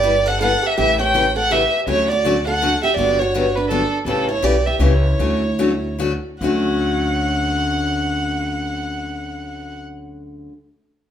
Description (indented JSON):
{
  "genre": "acoustic string swing (jazz manouche)",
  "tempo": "139-164 BPM",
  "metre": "3/4",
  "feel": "swing 61% on 8ths",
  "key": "D major",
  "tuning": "A4 = 438 Hz",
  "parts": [
    { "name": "warm violin", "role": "melody", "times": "0.0-9.8 s", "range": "A4 to G5", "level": "-20 LUFS", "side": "right 1 dB", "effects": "none" },
    { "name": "picked steel-string acoustic guitar", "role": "second line", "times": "0.0-10.5 s", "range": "A3 to C#5", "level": "-26 LUFS", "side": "right 4 dB", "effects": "none" },
    { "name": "picked steel-string acoustic guitar", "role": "accompaniment", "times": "0.0-10.5 s", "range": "C#3 to G4", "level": "-22 LUFS", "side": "left 4 dB", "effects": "none" },
    { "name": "upright bass", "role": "bass", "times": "0.0-10.5 s", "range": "G1 to D2", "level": "-23 LUFS", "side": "equal", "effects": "none" }
  ],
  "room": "wet large studio reverb, RT60 0.9 s",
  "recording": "band playing live in one room",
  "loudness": "-16 LUFS",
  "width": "side -9 dB against mid",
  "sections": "0.0-6.4 A section; 6.4-9.0 B section",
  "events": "slowing down 4.1-6.4",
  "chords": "0.0 G6; 0.8 A7; 1.9 Dmaj7; 3.0 Gmaj7; 4.1 A7; 5.2 Dmaj7"
}